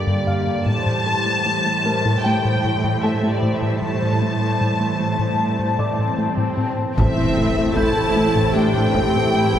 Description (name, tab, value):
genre	cinematic, hybrid orchestral and electronic film score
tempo	76 BPM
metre	4/4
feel	straight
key	A phrygian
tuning	A4 = 439 Hz
part	rich symphonic violin section	melody	0.0-9.6 s	D5 to A5	-25 LUFS	left 2 dB	none
part	hollow soft pad	sustained chords	0.0-9.6 s	D3 to A5	-24 LUFS	equal	chorus
part	rich symphonic cello section	bass	0.0-9.6 s	G2 to A2	-25 LUFS	right 2 dB	none
part	plucky analog bass	riff	0.1-9.6 s	G2 to A3	-23 LUFS	left 1 dB	none
part	felt-muted upright piano	texture	0.3-9.6 s	A4 to G6	-31 LUFS	equal	none
part	swell and impact	sound effects	5.2-9.6 s	none	-29 LUFS	left 1 dB	none
part	bright symphonic violin section	second line	7.0-9.6 s	E5 to A5	-25 LUFS	left 2 dB	none
part	rich symphonic viola section	accompaniment	7.0-9.6 s	C4 to E4	-26 LUFS	right 1 dB	none
part	clear trombone section	sustained chords	7.0-9.6 s	E3 to C4	-27 LUFS	right 2 dB	none
part	dark French horn section	sustained chords	7.0-9.6 s	E4 to A4	-22 LUFS	left 1 dB	none
part	rich symphonic double bass section	bass	7.0-9.6 s	A1	-27 LUFS	right 2 dB	none
part	taiko ensemble	drums	7.0-9.6 s	none	-26 LUFS	equal	none
room	wet concert hall reverb, RT60 2.2 s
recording	recorded in a church or concert hall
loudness	-17 LUFS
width	side -10 dB against mid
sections	0.0-7.0 A section; 7.0-9.6 A section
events	swell 5.2-7.0; impact 7.0-9.6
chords	0.0 Gm; 0.7 Am7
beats	| 0.67 1.46 2.25 3.04 | 3.83 4.62 5.41 6.20 | 6.98 7.77 8.56 9.35